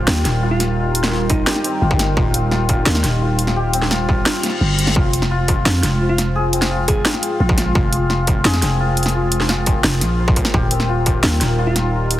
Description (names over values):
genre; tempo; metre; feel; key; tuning
half-time drum and bass; 172 BPM; 4/4; half-time; unclear; A4 = 440 Hz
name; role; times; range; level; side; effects
dark analog pad; sustained chords; 0.0-12.2 s; G3 to G5; -26 LUFS; right 3 dB; chorus, sidechain pumping
santur; arpeggios; 0.0-12.2 s; C4 to C5; -22 LUFS; left 4 dB; dub echo
growling 808-style bass; bass; 0.0-12.2 s; Eb1 to F2; -19 LUFS; equal; tube saturation
drum and bass drum kit; drums; 0.1-12.2 s; hi-hat, snare drum; -20 LUFS; equal; overdrive
bell-like FM electric piano; melody; 0.5-2.0, 6.1-7.4, 11.7-11.9 s; Eb4 to Ab4; -28 LUFS; right 1 dB; chorus, dub echo
electronic kick drum; drums; 1.3-11.1 s; none; -18 LUFS; equal; distortion
reverse cymbal; sound effects; 4.4-5.0 s; none; -25 LUFS; left 4 dB; none
room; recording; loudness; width
light reverb, digital ambience; heavily compressed radio sound, multiband compression; -15 LUFS; side -14 dB against mid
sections
0.0-12.2 A section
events
kick drops out 4.3-5.0; reverse cymbal 4.4-5.0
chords
0.0 Eb; 5.0 Fm; 10.5 Eb